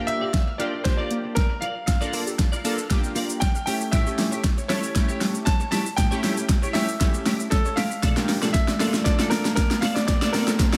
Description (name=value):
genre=dance-pop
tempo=117 BPM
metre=4/4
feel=straight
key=unclear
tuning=A4 = 440 Hz
part: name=clear baby grand piano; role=melody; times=0.0-10.8 s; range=A4 to A5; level=-32 LUFS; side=equal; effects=tape echo, slapback echo
part: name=chorused retro synth keys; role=accompaniment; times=0.0-10.5 s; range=A3 to A4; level=-32 LUFS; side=equal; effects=sidechain pumping, slapback echo
part: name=unison pluck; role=arpeggios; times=0.1-10.8 s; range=G2 to F6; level=-37 LUFS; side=equal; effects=none
part: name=twelve-string electric guitar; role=riff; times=0.1-10.8 s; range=E4 to D5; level=-36 LUFS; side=equal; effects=ensemble chorus
part: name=pop drum kit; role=drums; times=0.1-10.8 s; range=hi-hat, kick drum, shaker, snare drum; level=-24 LUFS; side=equal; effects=overdrive
part: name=riser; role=sound effects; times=7.4-10.8 s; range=none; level=-40 LUFS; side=equal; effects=none
room=moderate scoring stage reverb, RT60 1.6 s, digital ambience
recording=big arena sound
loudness=-23 LUFS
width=mono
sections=0.0-10.8 A section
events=build-up 0.0-10.8; drum fill 0.0-10.8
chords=0.0 Gm7; 3.7 A7; 8.0 Bbmaj7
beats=0.34 0.85 1.36 | 1.88 2.39 2.90 3.42 | 3.93 4.44 4.96 5.47 | 5.98 6.49 7.01 7.52 | 8.03 8.54 9.06 9.57 | 10.08 10.60